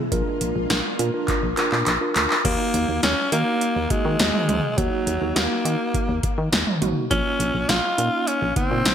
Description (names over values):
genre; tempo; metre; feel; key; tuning
synth-pop; 103 BPM; 4/4; straight; unclear; A4 = 445 Hz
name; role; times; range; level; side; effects
ensemble organ-string; sustained chords; 0.0-2.4 s; D3 to E#4; -32 LUFS; left 1 dB; ensemble chorus
mellow tine electric piano; accompaniment; 0.1-8.9 s; Db3 to A#4; -27 LUFS; right 2 dB; medium stereo tremolo
solid FM bass; bass; 0.1-8.9 s; Ab1 to Eb3; -26 LUFS; left 1 dB; none
electro analog drum machine; drums; 0.1-8.9 s; crash cymbal, handclaps, hi-hat, kick drum, snare drum, toms; -23 LUFS; equal; overdrive, gated reverb
raspy alto saxophone; melody; 2.4-8.9 s; Gb3 to F4; -23 LUFS; left 1 dB; ping-pong delay
room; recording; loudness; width
moderate plate reverb, RT60 2.2 s; bright 1980s-style digital production; -19 LUFS; side -9 dB against mid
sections
0.0-2.4 A section; 2.4-8.9 B section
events
drum fill 1.3-2.4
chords
0.1 A#7; 2.4 Ebm; 7.1 Bbm